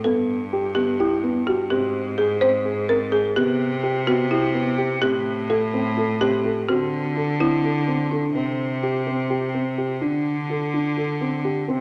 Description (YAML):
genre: contemporary instrumental, contemporary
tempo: 253 BPM (eighths)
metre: 7/8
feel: straight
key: C lydian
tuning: A4 = 440 Hz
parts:
  - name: folk marimba with medium mallets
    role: second line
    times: 0.0-8.2 s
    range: D4 to C5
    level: -25 LUFS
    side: equal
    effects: none
  - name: bright cello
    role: bass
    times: 0.0-11.8 s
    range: G2 to D3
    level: -28 LUFS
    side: equal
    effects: none
  - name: felt-muted upright piano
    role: arpeggios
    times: 0.1-11.8 s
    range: B3 to A4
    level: -27 LUFS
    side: equal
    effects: none
room: moderate concert hall reverb, RT60 2.2 s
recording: none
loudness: -22 LUFS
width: mono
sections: 0.0-8.3 A section; 8.3-11.8 B section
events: none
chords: 0.1 G69; 1.7 Abmaj7; 3.4 Cmaj7; 5.0 Am7; 6.7 D7; 8.3 C5; 10.0 D5